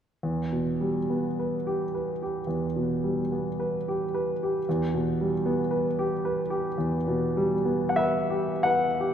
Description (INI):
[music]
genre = classical, romantic nocturne for solo piano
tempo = 40-58 BPM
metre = 4/4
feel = rubato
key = E minor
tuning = A4 = 436 Hz
[part]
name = clear grand piano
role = solo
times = 0.2-9.1 s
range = E2 to F#5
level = -25 LUFS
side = equal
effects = none
[sound]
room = wet church reverb, RT60 3.4 s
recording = recorded in a church or concert hall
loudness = -25 LUFS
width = side -9 dB against mid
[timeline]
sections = 0.2-9.1 A section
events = none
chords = 0.2 Em